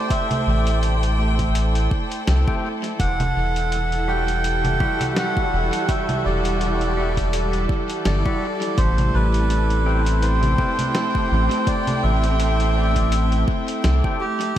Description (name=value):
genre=ambient dub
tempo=83 BPM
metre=4/4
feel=swing 56% on 16ths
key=unclear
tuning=A4 = 437 Hz
part: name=melodica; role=melody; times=0.0-14.6 s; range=G4 to G5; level=-25 LUFS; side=right 2 dB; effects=dub echo
part: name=warm chamber string section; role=sustained chords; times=0.0-14.6 s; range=E3 to G5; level=-26 LUFS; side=right 1 dB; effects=none
part: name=overdriven tonewheel organ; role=stabs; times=0.0-14.3 s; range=G3 to G4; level=-30 LUFS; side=left 3 dB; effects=dub echo
part: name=electronic kick drum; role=drums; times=0.1-14.2 s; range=none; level=-23 LUFS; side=equal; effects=small room reverb
part: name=lo-fi sampler-style drum kit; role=drums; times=0.1-14.5 s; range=congas, hi-hat, snare drum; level=-29 LUFS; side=equal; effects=small room reverb, dub echo
part: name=soft dub sub bass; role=bass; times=0.5-14.0 s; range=E1 to C2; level=-20 LUFS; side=equal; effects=none
room=light reverb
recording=vinyl crackle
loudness=-18 LUFS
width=side -11 dB against mid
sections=0.0-14.6 A section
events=none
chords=0.0 Am7; 3.0 Emadd9; 8.8 Am7